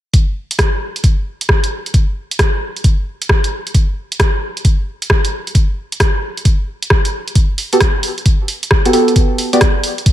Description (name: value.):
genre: UK garage, two-step garage.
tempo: 133 BPM.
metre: 4/4.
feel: swing 65% on 16ths.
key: G major.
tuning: A4 = 440 Hz.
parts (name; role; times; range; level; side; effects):
electronic kick drum; drums; 0.1-10.1 s; none; -13 LUFS; equal; none.
punchy analog drum machine; drums; 0.1-10.1 s; hi-hat, rim click; -17 LUFS; equal; none.
deep mellow chord stab; stabs; 7.7-9.6 s; B3 to D5; -14 LUFS; right 1 dB; chorus, ping-pong delay.
room: digital ambience.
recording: none.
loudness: -13 LUFS.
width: side -13 dB against mid.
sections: 0.1-10.1 A section.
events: none.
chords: 0.1 N.C.; 7.4 Gmaj9.